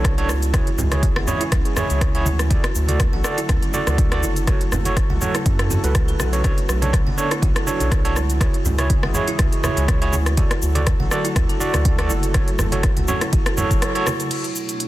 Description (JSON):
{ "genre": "afro house", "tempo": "122 BPM", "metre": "4/4", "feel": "swing 54% on 16ths", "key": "F# minor", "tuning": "A4 = 440 Hz", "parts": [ { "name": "warm analog pad", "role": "sustained chords", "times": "0.0-14.9 s", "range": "B2 to A4", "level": "-30 LUFS", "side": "left 1 dB", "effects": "chorus, sidechain pumping" }, { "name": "overdriven tine electric piano", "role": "stabs", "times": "0.0-14.1 s", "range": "D4 to D5", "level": "-25 LUFS", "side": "right 2 dB", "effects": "fast tremolo, sidechain pumping, low-pass filter, dub echo" }, { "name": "round analog bass", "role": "bass", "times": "0.0-13.8 s", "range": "F#1 to F#2", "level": "-22 LUFS", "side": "equal", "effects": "sidechain pumping" }, { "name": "deep house drum kit", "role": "drums", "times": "0.0-14.9 s", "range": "cabasa, crash cymbal, hi-hat, rim click", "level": "-26 LUFS", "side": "left 1 dB", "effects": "soft clipping on snare" }, { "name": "electronic kick drum", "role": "drums", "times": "0.0-13.8 s", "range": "none", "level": "-20 LUFS", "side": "equal", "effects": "none" }, { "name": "buzzing kalimba", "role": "arpeggios", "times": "0.2-14.1 s", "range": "C#4 to F#5", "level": "-29 LUFS", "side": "right 3 dB", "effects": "sidechain pumping, dub echo" }, { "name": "congas", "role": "percussion", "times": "0.3-14.2 s", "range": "none", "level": "-28 LUFS", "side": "right 2 dB", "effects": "none" } ], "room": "little or no reverb", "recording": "dense, heavily limited modern master", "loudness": "-17 LUFS", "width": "side -16 dB against mid", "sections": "0.0-14.3 A section", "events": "break 13.8-14.3; band accent 13.8", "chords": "0.0 Bm7; 0.5 C#m; 2.5 D; 4.5 F#m; 6.4 Bm7; 8.4 C#m; 10.4 D; 12.3 F#m; 14.3 Bm7", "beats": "0.05 | 0.54 1.03 1.52 2.02 | 2.51 3.00 3.49 3.98 | 4.47 4.97 5.46 5.95 | 6.44 6.93 7.43 7.92 | 8.41 8.90 9.39 9.88 | 10.38 10.87 11.36 11.85 | 12.34 12.84 13.33 13.82 | 14.31 14.80" }